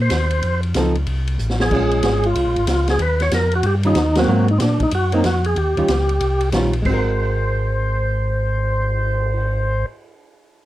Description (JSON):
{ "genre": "soul jazz organ trio", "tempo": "187 BPM", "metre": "4/4", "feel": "swing 64% on 8ths", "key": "Ab mixolydian", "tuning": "A4 = 440 Hz", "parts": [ { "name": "percussive tonewheel organ", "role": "melody", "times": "0.0-9.9 s", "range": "C4 to Db5", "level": "-21 LUFS", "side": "equal", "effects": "slow rotary speaker" }, { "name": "mellow tonewheel organ", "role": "bass", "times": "0.0-9.8 s", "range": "Ab1 to Bb2", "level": "-20 LUFS", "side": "equal", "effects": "slow rotary speaker" }, { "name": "swinging big-band drum kit", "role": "drums", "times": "0.1-9.4 s", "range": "crash cymbal, cymbal swell, hi-hat, kick drum, ride cymbal, snare drum", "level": "-26 LUFS", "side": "equal", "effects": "none" }, { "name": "archtop guitar, miked and amplified", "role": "accompaniment", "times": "0.8-10.0 s", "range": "Eb3 to Bb4", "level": "-22 LUFS", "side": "right 2 dB", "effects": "none" } ], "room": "light reverb", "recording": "worn, warbling old tape, cassette tape, warbly pitch drift", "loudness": "-16 LUFS", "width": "side -15 dB against mid", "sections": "0.0-6.9 A section; 6.9-9.4 B section", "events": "drum fill 1.4-1.7; band accent 4.1", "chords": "0.4 F7; 1.7 Bbm7; 3.0 Ebadd9; 4.3 Ab9; 5.6 Eb9; 6.9 Ab9", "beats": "0.11 | 0.43 0.75 1.07 1.39 | 1.72 2.04 2.36 2.68 | 3.00 3.32 3.64 3.96 | 4.28 4.60 4.92 5.25 | 5.57 5.89 6.21 6.53 | 6.85 7.17 7.49 7.82 | 8.14 8.46 8.78 9.10" }